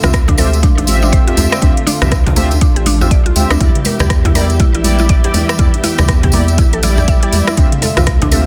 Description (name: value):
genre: afro house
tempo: 121 BPM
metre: 4/4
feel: swing 60% on 16ths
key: D minor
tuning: A4 = 440 Hz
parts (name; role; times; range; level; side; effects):
- dark studio string section; sustained chords; 0.0-8.5 s; D3 to E5; -25 LUFS; equal; sidechain pumping
- mallet-like synth pluck; arpeggios; 0.0-8.5 s; A3 to E5; -23 LUFS; equal; chorus, cassette tape, sidechain pumping, tape echo
- mellow synth brass; stabs; 0.0-8.4 s; G3 to E5; -23 LUFS; equal; chorus, sidechain pumping, tape echo
- round analog bass; bass; 0.0-8.5 s; A1 to E2; -17 LUFS; equal; sidechain pumping
- afro-pop drum kit; drums; 0.0-8.4 s; hi-hat, rim click, toms; -22 LUFS; equal; soft clipping on snare
- congas; percussion; 0.0-8.4 s; none; -26 LUFS; equal; none
- djembe; percussion; 0.0-8.4 s; none; -25 LUFS; equal; none
- tambourine; percussion; 0.0-8.4 s; none; -26 LUFS; equal; none
- electronic kick drum; drums; 0.1-8.3 s; none; -15 LUFS; equal; none
room: studio reverb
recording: dense, heavily limited modern master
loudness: -12 LUFS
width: mono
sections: 0.0-8.5 A section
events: none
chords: 0.0 Dm11; 3.6 Em7b5; 7.6 Dm11